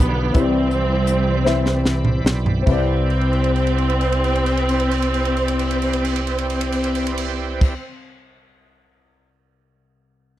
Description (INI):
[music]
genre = slow gospel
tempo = 46-58 BPM (dotted quarters)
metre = 6/8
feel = straight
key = C major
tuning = A4 = 440 Hz
[part]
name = rich studio string section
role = melody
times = 0.0-7.8 s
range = D3 to C4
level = -21 LUFS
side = equal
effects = slapback echo
[part]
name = warm baby grand piano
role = accompaniment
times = 0.0-10.4 s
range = C2 to E5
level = -25 LUFS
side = left 4 dB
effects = none
[part]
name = bright tonewheel organ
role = sustained chords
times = 0.0-7.7 s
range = C4 to B5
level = -29 LUFS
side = right 4 dB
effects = slow rotary speaker, overdrive, chorus vibrato
[part]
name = modern bright fingered electric bass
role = bass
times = 0.0-7.7 s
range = B1 to C2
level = -22 LUFS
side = equal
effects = none
[part]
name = crisp fusion drum kit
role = drums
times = 0.0-9.3 s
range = crash cymbal, hi-hat, kick drum, ride cymbal, snare drum, toms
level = -23 LUFS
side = right 1 dB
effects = none
[sound]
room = light reverb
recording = dry, close 1970s-style studio recording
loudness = -17 LUFS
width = side -13 dB against mid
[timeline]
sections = 0.0-2.7 A section; 2.7-7.8 B section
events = slowing down 0.0-2.7; drum fill 1.4-2.7, 3.1-7.6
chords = 0.3 Cmaj9